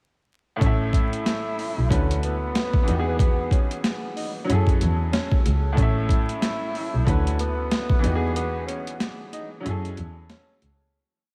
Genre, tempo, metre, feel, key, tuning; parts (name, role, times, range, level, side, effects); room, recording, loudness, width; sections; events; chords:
hip hop, boom-bap hip-hop; 93 BPM; 4/4; swing 58% on 16ths; A4 = 440 Hz
bright upright piano; accompaniment; 0.6-11.0 s; A2 to E5; -31 LUFS; equal; cassette tape, high-pass filter, low-pass filter
muted double bass; bass; 0.6-10.8 s; A1 to F#2; -27 LUFS; equal
boom bap sampler-style drum kit; drums; 0.6-10.8 s; hi-hat, kick drum, snare drum; -26 LUFS; equal; overdrive, vintage 12-bit sampler grit
breathy tenor saxophone; melody; 0.9-10.6 s; B3 to E4; -34 LUFS; equal; high-pass filter, low-pass filter, diffuse ambient delay
moderate cathedral reverb, RT60 6.7 s; dreamy mix soaked in reverb, vinyl crackle; -23 LUFS; mono
0.6-10.9 verse
break 8.4-10.9; fade-out 8.4-10.9
0.6 A; 1.9 D6; 2.9 Emaj7; 4.5 F#m7; 5.8 A; 7.1 D6; 8.0 Emaj7; 9.6 F#m7